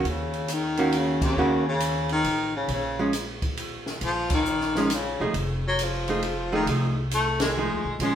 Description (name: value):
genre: jazz, small-group swing and bop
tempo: 136 BPM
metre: 3/4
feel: swing 66% on 8ths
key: unclear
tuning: A4 = 441 Hz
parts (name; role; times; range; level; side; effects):
- archtop guitar, miked and amplified; accompaniment; 0.0-8.2 s; Eb3 to Ab4; -26 LUFS; right 2 dB; none
- upright bass; bass; 0.0-8.2 s; E1 to Eb2; -31 LUFS; equal; none
- open jazz drum kit; drums; 0.0-8.1 s; crash cymbal, hi-hat, kick drum, ride cymbal, snare drum; -31 LUFS; equal; none
- clear baritone saxophone; melody; 0.1-8.2 s; Db3 to A3; -26 LUFS; left 2 dB; none
room: wet stone room reverb, RT60 1.0 s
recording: band playing live in one room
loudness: -23 LUFS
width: side -9 dB against mid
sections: 0.0-8.2 A section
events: band accent 1.2, 4.2, 7.3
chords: 0.1 Ebm7; 2.7 Bbm7; 5.3 F7#9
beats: | 0.05 0.49 0.93 | 1.37 1.81 2.25 | 2.70 3.14 3.58 | 4.02 4.46 4.91 | 5.35 5.79 6.23 | 6.68 7.12 7.56 | 8.01